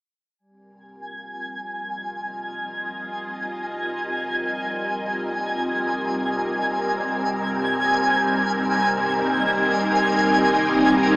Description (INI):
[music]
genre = ambient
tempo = free time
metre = none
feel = none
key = F minor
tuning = A4 = 440 Hz
[part]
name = string machine, full ensemble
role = sustained chords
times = 1.0-11.2 s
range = G3 to F5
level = -23 LUFS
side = equal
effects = phaser, ensemble chorus, shimmer reverb
[part]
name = twinkling granular texture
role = texture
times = 1.0-11.2 s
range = Ab5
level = -23 LUFS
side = equal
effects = built-in reverb, shimmer reverb
[sound]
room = wet huge ambient reverb, RT60 8.2 s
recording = small speaker sound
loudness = -20 LUFS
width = side -31 dB against mid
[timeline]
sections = 0.4-11.2 A section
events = fade-in on string machine 0.4-11.2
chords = 0.4 Fm7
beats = free time